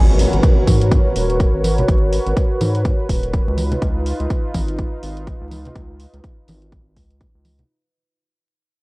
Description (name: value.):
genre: deep house.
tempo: 124 BPM.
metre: 4/4.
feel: swing 58% on 16ths.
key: unclear.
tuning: A4 = 443 Hz.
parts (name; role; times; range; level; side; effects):
warm analog pad; sustained chords; 0.0-7.7 s; D#4 to C#5; -23 LUFS; right 1 dB; chorus, sidechain pumping.
round analog bass; bass; 0.0-7.6 s; D#1 to G#2; -20 LUFS; equal; sidechain pumping.
impact; sound effects; 0.0-1.9 s; none; -25 LUFS; equal; none.
electronic hi-hat; drums; 0.2-7.7 s; none; -33 LUFS; equal; overdrive.
electronic kick drum; drums; 0.4-7.3 s; none; -17 LUFS; equal; none.
congas; percussion; 0.7-7.7 s; none; -24 LUFS; equal; none.
room: digital ambience.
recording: dry, gritty hardware recording, vinyl crackle.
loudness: -15 LUFS.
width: side -22 dB against mid.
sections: 0.0-7.7 A section.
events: fade-out 0.0-7.7; impact 0.0-1.9.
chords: 0.0 G#m11; 3.6 C#9.